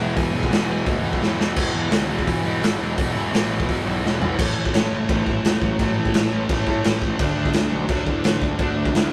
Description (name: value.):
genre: punk rock.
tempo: 171 BPM.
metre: 4/4.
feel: straight.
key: A major.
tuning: A4 = 440 Hz.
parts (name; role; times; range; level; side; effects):
smooth overdriven lead guitar; melody; 0.0-0.8, 4.4-9.1 s; E3 to G#5; -32 LUFS; equal; none.
distorted electric guitar; riff; 0.0-4.4 s; E2 to E3; -30 LUFS; equal; overdrive.
sludgy distorted guitar; riff; 0.0-9.1 s; E2 to D4; -27 LUFS; equal; overdrive.
fuzz picked electric bass; bass; 0.0-9.1 s; E1 to A2; -29 LUFS; equal; overdrive.
raw garage drum kit; drums; 0.2-9.0 s; crash cymbal, hi-hat, kick drum, snare drum, toms; -25 LUFS; equal; none.
room: moderate stone room reverb, RT60 1.4 s.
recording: rough rehearsal-room recording.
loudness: -21 LUFS.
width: mono.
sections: 0.0-1.6 A section; 1.6-4.4 B section; 4.4-9.1 C section.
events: drum fill 1.2-1.6, 4.0-4.4.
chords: 0.0 E; 1.6 E5; 4.4 A; 7.2 D.